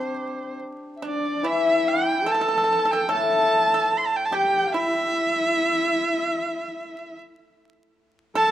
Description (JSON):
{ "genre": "chinese traditional, Chinese chamber ensemble", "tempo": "74 BPM", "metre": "4/4", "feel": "straight", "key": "C gong mode", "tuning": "A4 = 440 Hz", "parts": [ { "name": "clear erhu", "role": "melody", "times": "0.0-8.5 s", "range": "C5 to C6", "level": "-23 LUFS", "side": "right 3 dB", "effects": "none" }, { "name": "dark horsehead fiddle", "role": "second line", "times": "0.0-8.5 s", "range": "C4 to A4", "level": "-27 LUFS", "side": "left 1 dB", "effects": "none" }, { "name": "mellow large dizi", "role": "second line", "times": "0.0-8.5 s", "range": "C5 to A5", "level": "-30 LUFS", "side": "left 3 dB", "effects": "none" }, { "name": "pipa", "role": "second line", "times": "0.0-8.5 s", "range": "D4 to A4", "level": "-30 LUFS", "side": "right 4 dB", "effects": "none" }, { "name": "hammered dulcimer", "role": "accompaniment", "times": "0.0-5.5 s", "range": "A2 to G4", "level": "-27 LUFS", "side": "left 5 dB", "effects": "none" } ], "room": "moderate plate reverb, RT60 2.4 s", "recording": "vinyl crackle", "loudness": "-20 LUFS", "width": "side -12 dB against mid", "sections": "0.0-1.4 A section; 1.4-8.5 B section", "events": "none", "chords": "none" }